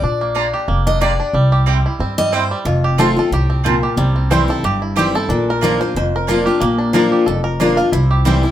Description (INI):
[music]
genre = bluegrass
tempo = 182 BPM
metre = 4/4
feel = swing 55% on 8ths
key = unclear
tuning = A4 = 441 Hz
[part]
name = bluegrass banjo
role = melody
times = 0.0-8.5 s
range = G3 to F5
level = -22 LUFS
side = right 3 dB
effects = none
[part]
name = picked steel-string acoustic guitar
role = accompaniment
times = 0.0-8.5 s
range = F2 to Eb5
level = -17 LUFS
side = left 2 dB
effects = none
[part]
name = upright bass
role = bass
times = 0.0-8.4 s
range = F1 to G2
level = -18 LUFS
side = equal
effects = none
[part]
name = mandolin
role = stabs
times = 0.3-8.4 s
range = Bb3 to Bb5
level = -22 LUFS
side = right 5 dB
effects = none
[sound]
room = moderate studio reverb, RT60 0.8 s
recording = band playing live in one room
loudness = -13 LUFS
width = side -11 dB against mid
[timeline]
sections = 0.0-2.7 A section; 2.7-8.5 A section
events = steel-string acoustic guitar solo 0.0-2.7; five-string banjo solo 2.7-8.5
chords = 0.0 Bb; 1.3 C; 2.7 F; 4.0 C; 5.3 Bb; 7.9 C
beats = | 0.02 0.35 0.68 1.01 | 1.34 1.67 2.00 2.33 | 2.65 2.98 3.31 3.64 | 3.97 4.30 4.63 4.96 | 5.29 5.62 5.95 6.28 | 6.61 6.94 7.27 7.60 | 7.93 8.26